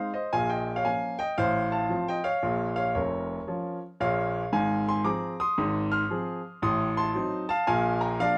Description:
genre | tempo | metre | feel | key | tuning
jazz, stride piano | 114 BPM | 4/4 | swing 64% on 8ths | unclear | A4 = 440 Hz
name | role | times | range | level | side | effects
clear grand piano | solo | 0.0-8.4 s | F1 to F6 | -28 LUFS | equal | none
room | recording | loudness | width
moderate studio reverb, RT60 0.5 s | worn, warbling old tape, cassette tape, warbly pitch drift | -28 LUFS | mono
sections
0.0-8.4 A section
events
none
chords
0.3 Bbm; 1.4 F/A; 2.4 Bbm; 4.5 Fm/Ab; 6.6 Adim7; 7.7 Bb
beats
| 0.33 0.86 1.38 1.90 | 2.43 2.95 3.48 4.00 | 4.52 5.05 5.57 6.10 | 6.62 7.15 7.67 8.20

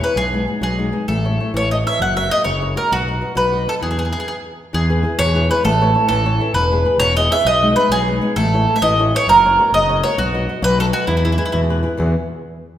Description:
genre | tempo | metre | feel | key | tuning
italian folk, Italian serenade | 132 BPM (dotted quarters) | 6/8 | straight | E major | A4 = 440 Hz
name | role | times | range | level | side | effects
bowl-back mandolin | melody | 0.0-11.6 s | E4 to F#5 | -16 LUFS | right 1 dB | none
flamenco guitar | accompaniment | 0.0-12.1 s | E2 to E5 | -22 LUFS | left 2 dB | none
overdriven picked electric bass | bass | 0.2-12.1 s | E1 to E2 | -20 LUFS | equal | none
room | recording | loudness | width
wet recital hall reverb, RT60 1.6 s | recorded in a church or concert hall | -14 LUFS | side -11 dB against mid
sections
0.0-4.7 A section; 4.7-12.0 A section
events
stop 4.3-4.7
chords
0.2 B6; 1.1 A; 2.0 F#; 2.9 B; 3.8 E; 5.6 A; 6.5 E; 7.4 B6; 8.4 A; 9.3 F#; 10.2 B; 11.1 E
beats
| 0.16 0.62 | 1.08 1.54 | 2.00 2.46 | 2.91 3.37 | 3.82 4.28 | 4.73 5.19 | 5.64 6.09 | 6.54 7.00 | 7.45 7.90 | 8.36 8.81 | 9.27 9.72 | 10.17 10.62 | 11.07 11.53 | 11.98

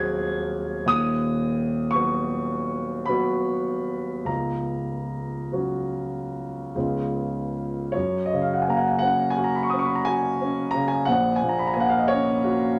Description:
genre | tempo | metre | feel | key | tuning
classical, romantic nocturne for solo piano | 48-62 BPM (dotted quarters) | 9/8 | rubato | F# major | A4 = 441 Hz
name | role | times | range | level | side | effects
warm concert grand piano | solo | 0.0-12.8 s | C#1 to G#6 | -25 LUFS | equal | none
room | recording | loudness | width
moderate stone room reverb, RT60 1.1 s | none | -25 LUFS | mono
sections
0.0-7.9 A section; 7.9-12.8 B section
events
none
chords
0.0 G#7/D#; 0.9 B/D#; 4.3 F#/C#; 6.7 C#; 7.9 F#; 11.1 F#/A#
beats
| 0.91 1.95 3.09 | 4.29 5.52 6.75 | 7.94 9.02 10.07 | 11.09 12.10

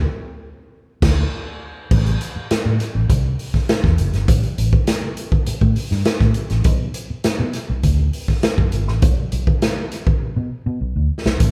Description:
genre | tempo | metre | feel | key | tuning
funk | 101 BPM | 4/4 | straight | A dorian | A4 = 442 Hz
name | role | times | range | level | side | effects
vintage muted fingered electric bass | bass | 0.0-11.5 s | F#1 to B2 | -22 LUFS | equal | none
swinging big-band drum kit | drums | 1.0-11.5 s | crash cymbal, hi-hat, kick drum, snare drum | -21 LUFS | equal | none
room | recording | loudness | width
light reverb | band playing live in one room | -19 LUFS | mono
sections
0.0-1.9 A section; 1.9-11.5 B section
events
band accent 0.0-1.9; drum fill 10.2-11.4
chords
none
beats
0.14 0.73 1.32 | 1.91 2.50 3.10 3.69 | 4.28 4.88 5.47 6.06 | 6.65 7.25 7.84 8.44 | 9.03 9.62 10.21 10.81 | 11.40

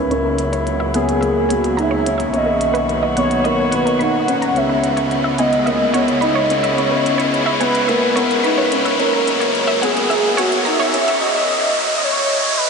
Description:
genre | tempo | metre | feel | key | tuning
piano and strings electronica | 108 BPM | 4/4 | straight | unclear | A4 = 440 Hz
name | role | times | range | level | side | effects
warm velvety synth lead | melody | 0.0-12.7 s | F#4 to F#5 | -19 LUFS | equal | chorus, ping-pong delay
dark string quartet | sustained chords | 0.0-11.2 s | C#3 to F#4 | -23 LUFS | left 1 dB | low-pass filter
wide unison pluck | arpeggios | 0.0-11.2 s | A#4 to B5 | -24 LUFS | right 1 dB | auto-pan, ping-pong delay
dark upright piano | riff | 0.0-11.2 s | A#3 to D#4 | -21 LUFS | equal | wide subtle chorus, ping-pong delay
dark studio double bass section | bass | 0.0-11.2 s | B1 to C#2 | -28 LUFS | equal | none
riser | sound effects | 0.3-12.7 s | none | -23 LUFS | equal | none
minimal click drum kit | drums | 0.1-11.2 s | hi-hat, toms | -33 LUFS | right 2 dB | overdrive, high-pass filter on hats, studio ambience, high-pass filter on toms
room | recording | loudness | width
wet huge ambient reverb, RT60 6.9 s | dreamy mix soaked in reverb, high-pass filter, nothing above 10.5 kHz | -14 LUFS | side -5 dB against mid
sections
0.0-12.7 A section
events
build-up 0.0-12.7; filter sweep on string quartet 0.0-12.7; filter sweep on synth arpeggio sound 0.0-12.7; filter sweep 0.0-12.7; riser 0.3-12.7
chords
0.1 F#7/C#; 2.3 Bmaj7; 4.6 C#m7; 9.0 F#7/C#; 11.2 N.C.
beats
| 0.11 0.66 1.22 1.77 | 2.33 2.89 3.44 4.00 | 4.55 5.11 5.66 6.22 | 6.78 7.33 7.89 8.44 | 9.00 9.55 10.11 10.66 | 11.22 11.78 12.33

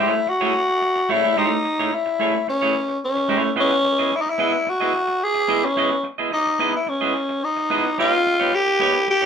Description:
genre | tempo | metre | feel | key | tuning
disco | 109 BPM | 4/4 | straight | C# minor | A4 = 440 Hz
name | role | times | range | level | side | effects
growling tenor saxophone | melody | 0.0-9.3 s | C#4 to G#4 | -19 LUFS | left 1 dB | none
clean electric guitar | accompaniment | 0.0-9.3 s | A3 to D#5 | -22 LUFS | right 3 dB | none
room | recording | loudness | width
moderate studio ambience, RT60 0.5 s | band playing live in one room | -18 LUFS | side -7 dB against mid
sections
0.0-9.3 A section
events
none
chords
0.0 F#m9; 3.6 C#m9; 8.0 D#7b13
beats
0.26 0.81 | 1.36 1.91 2.46 3.01 | 3.56 4.11 4.66 5.21 | 5.76 6.32 6.87 7.42 | 7.97 8.52 9.07

